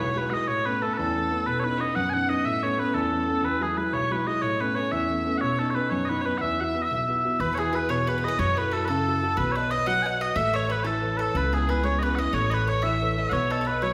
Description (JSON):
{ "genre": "celtic folk, Celtic jig", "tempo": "121 BPM (dotted quarters)", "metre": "6/8", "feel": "straight", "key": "E major", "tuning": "A4 = 440 Hz", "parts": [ { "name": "mellow small bagpipes", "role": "melody", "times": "0.0-13.9 s", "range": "G#4 to G#5", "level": "-28 LUFS", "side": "equal", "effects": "none" }, { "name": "bright fiddle", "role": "second line", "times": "0.0-13.9 s", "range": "G#4 to F#5", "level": "-38 LUFS", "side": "equal", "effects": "none" }, { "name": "dark grand piano", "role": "accompaniment", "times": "0.0-13.9 s", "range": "B1 to D#5", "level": "-30 LUFS", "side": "equal", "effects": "none" }, { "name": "mandolin", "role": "second line", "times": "7.4-13.9 s", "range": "G#4 to F#5", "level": "-35 LUFS", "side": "equal", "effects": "none" }, { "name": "upright bass", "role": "bass", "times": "7.4-13.9 s", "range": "A1 to F#2", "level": "-31 LUFS", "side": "equal", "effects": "none" } ], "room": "wet recital hall reverb, RT60 1.5 s", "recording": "recorded in a church or concert hall", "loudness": "-25 LUFS", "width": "mono", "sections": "0.0-7.4 A section; 7.4-13.9 A section", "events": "none", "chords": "0.5 Aadd9; 1.5 Badd9; 2.4 Aadd9; 3.4 Eadd9; 4.4 Aadd9; 5.4 Badd9; 6.4 Esus2; 7.4 Eadd9; 8.4 F#m7; 9.4 Badd9; 10.4 Aadd9; 11.3 C#m7; 12.3 Aadd9; 13.3 Badd9" }